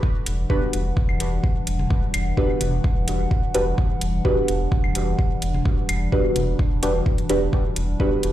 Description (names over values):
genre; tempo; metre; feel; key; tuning
dub techno; 128 BPM; 4/4; straight; E minor; A4 = 441 Hz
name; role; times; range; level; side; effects
warbly tape-like pad; sustained chords; 0.0-8.3 s; E3 to F#5; -29 LUFS; equal; chorus, built-in reverb, sidechain pumping
electronic kick drum; drums; 0.0-8.1 s; none; -21 LUFS; equal; none
soft dub sub bass; bass; 0.3-8.3 s; E1; -24 LUFS; equal; tube saturation, sidechain pumping
electronic hi-hat; drums; 0.3-8.3 s; none; -31 LUFS; equal; overdrive
deep mellow chord stab; stabs; 0.5-8.3 s; D4 to B4; -25 LUFS; right 1 dB; chorus, phaser, sidechain pumping, dub echo
electronic claves and toms; percussion; 1.1-6.5 s; none; -31 LUFS; left 1 dB; sidechain pumping on perc, sidechain pumping on toms, dub echo
room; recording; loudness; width
light reverb; played on a big sound system in a bare room, large studio reverb; -19 LUFS; side -13 dB against mid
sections
0.0-8.3 A section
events
none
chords
0.0 Em9